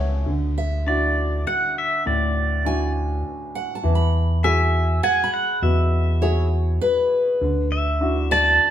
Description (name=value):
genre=folk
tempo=101 BPM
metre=3/4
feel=straight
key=unclear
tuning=A4 = 440 Hz
part: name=warm upright piano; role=accompaniment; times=0.0-8.7 s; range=A2 to G#5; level=-27 LUFS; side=left 2 dB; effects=none
part: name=picked steel-string acoustic guitar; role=arpeggios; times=0.0-8.7 s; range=B4 to B5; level=-26 LUFS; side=equal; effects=none
part: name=fingered electric bass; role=bass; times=0.0-8.6 s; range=C#2 to E2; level=-21 LUFS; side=equal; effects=none
part: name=pedal steel guitar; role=second line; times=0.9-8.7 s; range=D5 to A5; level=-21 LUFS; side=equal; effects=none
room=moderate stone room reverb, RT60 1.1 s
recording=band playing live in one room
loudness=-18 LUFS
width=side -10 dB against mid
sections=0.3-8.7 A section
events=pedal steel guitar solo 0.3-8.7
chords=0.3 Dadd9; 3.8 Eadd9; 7.4 Dadd9